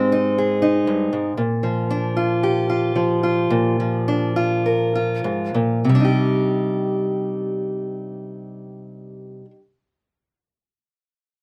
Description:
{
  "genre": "folk",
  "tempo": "48-61 BPM",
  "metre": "4/4",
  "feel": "straight",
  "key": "C minor",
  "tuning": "A4 = 436 Hz",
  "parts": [
    { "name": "fingerpicked acoustic archtop guitar", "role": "accompaniment", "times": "0.0-9.6 s", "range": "G2 to Bb4", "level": "-21 LUFS", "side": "equal", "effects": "none" }
  ],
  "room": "little or no reverb",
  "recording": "close, detailed microphones",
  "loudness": "-20 LUFS",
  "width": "mono",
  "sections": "0.0-5.9 A section; 5.9-10.8 B section",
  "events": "slowing down 0.0-5.9",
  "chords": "0.0 Abmaj7; 1.4 Bb; 5.9 Cmadd9"
}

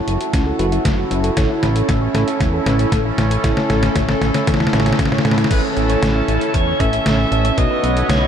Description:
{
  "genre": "synthwave",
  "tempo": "116 BPM",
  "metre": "4/4",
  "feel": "straight",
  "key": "unclear",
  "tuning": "A4 = 438 Hz",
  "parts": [
    { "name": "chorused pulse-width pad", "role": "sustained chords", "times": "0.0-8.3 s", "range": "B3 to F#5", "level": "-22 LUFS", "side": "right 2 dB", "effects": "sidechain pumping, shimmer reverb" },
    { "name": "thumb-piano-like synth pluck", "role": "arpeggios", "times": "0.0-8.3 s", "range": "B3 to A5", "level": "-25 LUFS", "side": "left 3 dB", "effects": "chorus, tape echo, shimmer reverb" },
    { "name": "bell-like tine electric piano", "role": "stabs", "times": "0.0-8.3 s", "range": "C#4 to C#5", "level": "-26 LUFS", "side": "right 2 dB", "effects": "fast stereo tremolo, tape echo, shimmer reverb" },
    { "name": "fat analog bass", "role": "bass", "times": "0.1-8.3 s", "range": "F#1 to A2", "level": "-20 LUFS", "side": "equal", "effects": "tube saturation, sidechain pumping" },
    { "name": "detuned 8-bit digital drum machine", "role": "drums", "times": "0.1-8.2 s", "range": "crash cymbal, hi-hat, snare drum", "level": "-20 LUFS", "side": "equal", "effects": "none" },
    { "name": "electronic kick drum", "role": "drums", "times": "0.3-7.7 s", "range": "none", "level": "-20 LUFS", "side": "equal", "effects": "none" },
    { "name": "clear alto saxophone", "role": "melody", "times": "5.5-8.3 s", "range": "A4 to E5", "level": "-22 LUFS", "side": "right 1 dB", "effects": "analog delay, shimmer reverb" }
  ],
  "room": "moderate huge ambient reverb, RT60 9.1 s",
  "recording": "dreamy mix soaked in reverb",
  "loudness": "-14 LUFS",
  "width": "side -8 dB against mid",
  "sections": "0.0-5.5 A section; 5.5-8.3 B section",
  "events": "drum fill 0.0-5.5; filter sweep on synth arpeggio sound 0.0-5.5",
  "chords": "0.0 F#m7; 1.4 A; 7.6 Badd9"
}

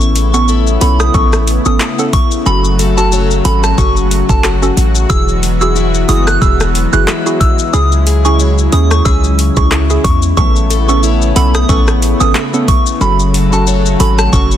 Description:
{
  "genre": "dancehall",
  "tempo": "91 BPM",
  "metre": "4/4",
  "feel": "swing 56% on 16ths",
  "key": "unclear",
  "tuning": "A4 = 441 Hz",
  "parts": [
    { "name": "lush unison pad", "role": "sustained chords", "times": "0.0-14.6 s", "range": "C#3 to F#4", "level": "-20 LUFS", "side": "right 1 dB", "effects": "chorus, tremolo, sidechain pumping" },
    { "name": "picked plugged-in steel-string acoustic guitar", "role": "arpeggios", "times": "0.0-14.6 s", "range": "C#3 to E5", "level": "-20 LUFS", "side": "left 9 dB", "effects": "none" },
    { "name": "hard-hitting 808-style bass", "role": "bass", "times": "0.0-14.6 s", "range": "E1 to E2", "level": "-12 LUFS", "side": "equal", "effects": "none" },
    { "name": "afro-pop drum kit", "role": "drums", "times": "0.0-14.6 s", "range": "handclaps, hi-hat, kick drum, rim click, shaker", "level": "-15 LUFS", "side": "equal", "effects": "overdrive" },
    { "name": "soft synth bell", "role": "melody", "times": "0.3-14.5 s", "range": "A5 to F#6", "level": "-18 LUFS", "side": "right 2 dB", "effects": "chorus, phaser, digital delay" },
    { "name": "hollow square pluck", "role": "accompaniment", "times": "0.3-14.5 s", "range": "B3 to A4", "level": "-19 LUFS", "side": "right 4 dB", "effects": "chorus" }
  ],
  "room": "digital ambience",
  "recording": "dense, heavily limited modern master",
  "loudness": "-9 LUFS",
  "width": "side -10 dB against mid",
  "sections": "0.0-14.6 A section",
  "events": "none",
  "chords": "0.0 Aadd9; 2.5 F#m; 5.1 Eadd9; 7.7 C#m; 10.4 Aadd9; 13.0 F#m"
}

